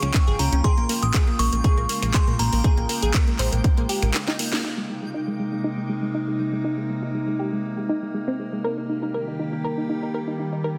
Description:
progressive house; 120 BPM; 4/4; straight; A4 = 440 Hz
glassy synth bell; melody; 0.0-4.1 s; Bb5 to Eb6; -31 LUFS; equal; chorus, tremolo, digital delay
evolving wavetable pad; sustained chords; 0.0-10.8 s; C3 to G4; -31 LUFS; equal; chorus, built-in reverb, sidechain pumping
glassy wavetable pluck; arpeggios; 0.0-10.7 s; Ab3 to C5; -31 LUFS; equal; chorus, sidechain pumping, digital delay
plucky analog bass; bass; 0.0-4.1 s; Ab1 to Bb2; -26 LUFS; equal; sidechain pumping
house drum kit; drums; 0.0-4.6 s; finger snaps, handclaps, hi-hat, snare drum; -30 LUFS; equal; overdrive
twinkling granular texture; texture; 0.0-4.7 s; G5; -44 LUFS; equal; built-in reverb, sidechain pumping
electronic kick drum; drums; 0.1-3.7 s; -22 LUFS; equal; overdrive
moderate lush hall reverb, RT60 1.7 s; dense, heavily limited modern master; -24 LUFS; mono
0.0-4.6 A section; 4.6-10.8 B section
drum fill 4.1-4.6; band accent 4.5
0.0 Db; 0.6 Bbm7; 4.6 Abadd9; 8.6 Eb

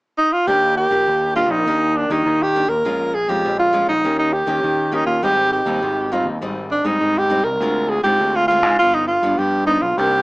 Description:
samba and choro; 101 BPM; 4/4; straight; Eb major; A4 = 440 Hz
breathy alto saxophone; melody; 0.2-10.2 s; D4 to Bb4; -16 LUFS; right 1 dB
nylon-string guitar; accompaniment; 0.5-10.2 s; F2 to G4; -25 LUFS; left 1 dB
growling fingered electric bass; bass; 0.5-10.2 s; G1 to Eb3; -25 LUFS; equal; overdrive
light reverb; small speaker sound; -15 LUFS; side -25 dB against mid
0.5-10.2 A section
0.5 Ebmaj7; 2.9 Bbm7; 4.0 Eb7; 5.2 Abmaj7; 7.6 Dm7b5; 8.8 G7

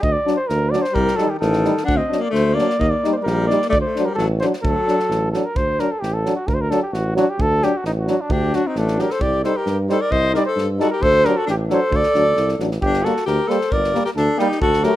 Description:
balkan folk, Balkan brass band; 132 BPM; 2/4; straight; D phrygian dominant; A4 = 440 Hz
warm flugelhorn; melody; 0.0-15.0 s; D4 to F#5; -20 LUFS; right 1 dB
mellow tuba; bass; 0.0-14.9 s; G1 to G2; -22 LUFS; right 1 dB
natural country drum kit; percussion; 0.0-14.9 s; kick drum, snare drum; -27 LUFS; right 1 dB
warm French horn; accompaniment; 0.3-14.9 s; A3 to Eb4; -24 LUFS; left 6 dB
warm trombone; accompaniment; 0.3-14.9 s; F#3 to G3; -24 LUFS; right 5 dB
warm alto saxophone; second line; 0.9-5.3, 8.3-15.0 s; Eb3 to C5; -23 LUFS; left 5 dB
studio reverb; rough home demo mix; -16 LUFS; side -14 dB against mid
0.0-5.6 A section; 5.6-12.8 B section; 12.8-15.0 C section
speeding up 0.0-15.0
0.0 D; 1.0 Cm; 1.9 D; 2.8 Eb; 3.7 D; 9.2 Cm; 11.0 D; 12.8 Gm

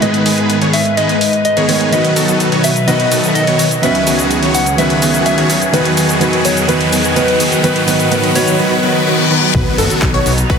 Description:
EDM, festival progressive house; 126 BPM; 4/4; straight; A4 = 442 Hz
soft struck synth lead; melody; 0.0-8.6 s; B4 to F#5; -18 LUFS; left 2 dB; chorus, digital delay
clear baby grand piano; accompaniment; 0.0-9.6 s; G#2 to D#4; -18 LUFS; right 3 dB; sidechain pumping, digital delay
dark studio string section; sustained chords; 0.0-10.6 s; C#2 to B4; -22 LUFS; left 2 dB; sidechain pumping
big supersaw lead; riff; 0.0-10.6 s; D#3 to C#5; -15 LUFS; equal; sidechain pumping, low-pass filter, digital delay
big-room dance drum kit; drums; 0.0-10.6 s; crash cymbal, handclaps, hi-hat, shaker; -20 LUFS; equal; overdrive
riser, reverse cymbal and impact; sound effects; 3.7-10.6 s; -21 LUFS; left 1 dB
wide unison pluck; arpeggios; 9.5-10.6 s; A4 to C#5; -20 LUFS; left 1 dB; sidechain pumping, digital delay
detuned saw bass; bass; 9.5-10.6 s; F#1 to B1; -17 LUFS; equal; sidechain pumping
electronic kick drum; drums; 9.5-10.6 s; -16 LUFS; left 1 dB; overdrive
moderate huge ambient reverb, RT60 4.4 s; dense, heavily limited modern master; -10 LUFS; side -6 dB against mid
0.0-9.5 A section; 9.5-10.6 B section
build-up 0.0-9.5; riser 3.7-8.6; reverse cymbal 8.6-9.5; drop 9.5-10.6; impact 9.5-10.6
0.0 G#m; 1.9 B; 3.8 C#m; 5.7 Eadd9; 7.6 G#m; 9.5 B

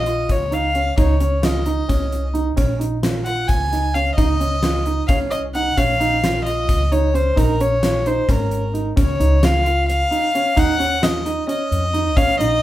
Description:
progressive instrumental, band music in an uneven meter; 263 BPM (eighths); 7/8; straight; Bb minor; A4 = 440 Hz
warm violin; melody; 0.0-12.6 s; Bb4 to Ab5; -21 LUFS; left 2 dB
upright bass; bass; 0.0-12.6 s; Ab1 to F2; -21 LUFS; equal
warm concert grand piano; arpeggios; 0.1-12.6 s; Db4 to F4; -23 LUFS; right 4 dB
gated 80s drum kit; drums; 0.1-12.5 s; hi-hat, kick drum, snare drum; -21 LUFS; left 1 dB
moderate large studio reverb, RT60 0.8 s; band playing live in one room; -16 LUFS; side -14 dB against mid
0.0-9.0 A section; 9.0-12.6 B section
0.0 Bbm; 1.0 Dbsus2; 2.6 Bbm7; 4.2 Dbsus2; 5.8 Bbm; 7.4 Bbm7; 9.0 Db; 10.6 Ebm7

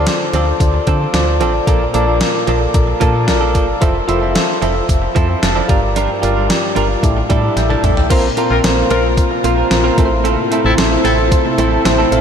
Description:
1980s-style pop; 112 BPM; 4/4; straight; A4 = 440 Hz
soft electric-piano-like synth keys; accompaniment; 0.0-12.2 s; G2 to C6; -16 LUFS; left 1 dB; chorus
direct-recorded clean electric guitar; riff; 0.0-12.2 s; F3 to Bb4; -20 LUFS; right 4 dB; lush chorus, ping-pong delay
solid FM bass; bass; 0.0-12.2 s; F1 to D3; -18 LUFS; equal
gated 80s digital drum machine; drums; 0.1-12.2 s; crash cymbal, hi-hat, kick drum, snare drum, toms; -18 LUFS; equal; gated reverb, gated reverb snare
shimmering ambient pad; sustained chords; 8.8-12.2 s; C3 to F4; -21 LUFS; left 1 dB; chorus, built-in reverb
warm horn section; stabs; 8.5-11.2 s; C4 to Bb4; -22 LUFS; left 4 dB
moderate huge ambient reverb, RT60 8.0 s; dreamy mix soaked in reverb; -12 LUFS; side -7 dB against mid
0.0-8.1 A section; 8.1-12.2 B section
synth keys fill 2.7-3.8, 11.3-12.2; drum fill 7.6-8.1
0.0 Dm7; 1.7 Bbmaj7; 3.8 Fmaj7; 5.7 Gm7; 7.0 A7sus4; 8.1 Bbsus2; 10.0 Am

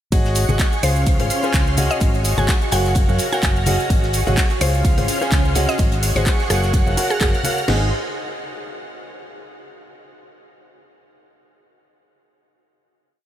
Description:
piano house; 127 BPM; 4/4; swing 55% on 16ths; Ab mixolydian; A4 = 439 Hz
analog string pad; sustained chords; 0.1-7.9 s; Db4 to Bb6; -27 LUFS; right 2 dB; ensemble chorus, sidechain pumping
clear concert grand piano; riff; 0.1-7.9 s; Eb4 to Ab5; -24 LUFS; equal; sidechain pumping, tape echo
hollow-body short-scale fingered electric bass; bass; 0.1-7.9 s; Gb1 to Gb2; -20 LUFS; equal; sidechain pumping
damped 70s drum kit; drums; 0.1-7.4 s; hi-hat, snare drum; -36 LUFS; left 4 dB
house drum kit; drums; 0.1-7.8 s; crash cymbal, kick drum, snare drum; -19 LUFS; equal; studio reverb
house drum kit; drums; 0.1-7.7 s; handclaps, hi-hat, ride cymbal, shaker; -26 LUFS; right 1 dB; studio reverb
tambourine and congas; percussion; 0.1-7.7 s; -30 LUFS; left 4 dB
mallet-like synth pluck; melody; 0.8-7.3 s; Ab4 to Ab5; -28 LUFS; equal; chorus, vintage 12-bit sampler grit, tape echo
light reverb, small room ambience; -16 LUFS; side -11 dB against mid
0.1-7.7 drop; 7.7-9.6 final chord
drop 0.1-7.7
0.1 Ab7sus4; 0.8 Dbmaj7; 2.0 Gbmaj7; 3.9 Ab7sus4; 4.6 Dbmaj7; 5.8 Ab7sus4; 6.7 Gbmaj7; 7.7 Ab

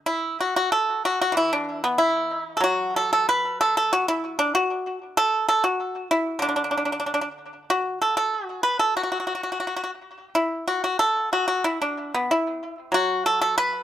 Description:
chinese traditional, Chinese solo plucked strings; 86-98 BPM; 4/4; rubato; D gong mode; A4 = 438 Hz
pipa; solo; 0.0-13.8 s; D3 to B4; -21 LUFS; equal; tape echo
light reverb; -21 LUFS; side -11 dB against mid
0.1-13.8 A section

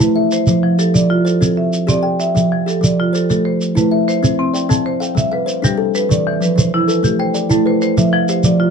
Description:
southern african traditional, mbira-style interlocking cycle; 128 BPM (dotted quarters); 12/8; straight; C major; A4 = 440 Hz
kalimba; arpeggios; 0.0-8.7 s; E3 to G5; -16 LUFS; equal
marimba with medium hard mallets; arpeggios; 0.0-8.7 s; E3 to A5; -18 LUFS; equal
shekere; percussion; 0.0-8.6 s; -18 LUFS; right 2 dB
moderate small room ambience, RT60 0.5 s; dark, warm production; -13 LUFS; side -6 dB against mid
0.0-4.2 A section; 4.2-8.7 B section
0.5 F; 1.4 C; 2.4 F; 3.3 Am; 4.2 C; 5.2 G; 6.1 E5; 7.0 Am; 8.0 F5

